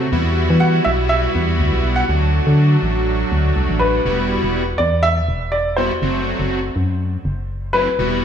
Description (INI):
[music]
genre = dance-pop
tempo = 122 BPM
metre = 4/4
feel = straight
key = E minor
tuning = A4 = 440 Hz
[part]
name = big bright polysynth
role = accompaniment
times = 0.0-8.2 s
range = F#3 to F#4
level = -20 LUFS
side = right 1 dB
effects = none
[part]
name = organ-like FM bass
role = bass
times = 0.0-8.2 s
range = E1 to E3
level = -18 LUFS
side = equal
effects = none
[part]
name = warm baby grand piano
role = melody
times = 0.6-8.2 s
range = B4 to F#5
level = -20 LUFS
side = equal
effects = dub echo
[sound]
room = light reverb, small room reverb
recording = studio reverb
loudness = -15 LUFS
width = side -8 dB against mid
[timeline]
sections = 0.0-4.1 A section; 4.1-8.2 B section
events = none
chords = 0.1 Emadd9; 2.1 D; 4.1 Emadd9; 6.0 F#dim